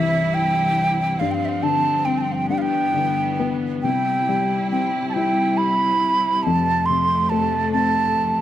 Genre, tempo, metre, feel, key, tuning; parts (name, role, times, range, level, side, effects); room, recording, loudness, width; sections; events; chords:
celtic folk, Celtic slow air; 44-48 BPM (dotted quarters); 6/8; rubato; C major; A4 = 438 Hz
wooden flute; melody; 0.0-8.4 s; E5 to C6; -20 LUFS; right 3 dB
dark upright piano; accompaniment; 0.0-8.4 s; C2 to E4; -23 LUFS; left 4 dB
bright studio string section; sustained chords; 0.0-8.4 s; F2 to E4; -27 LUFS; equal
light reverb; close, detailed microphones; -18 LUFS; side -12 dB against mid
0.0-8.4 A section
0.0 C; 1.2 G7sus4; 2.5 G6; 3.8 C; 6.5 F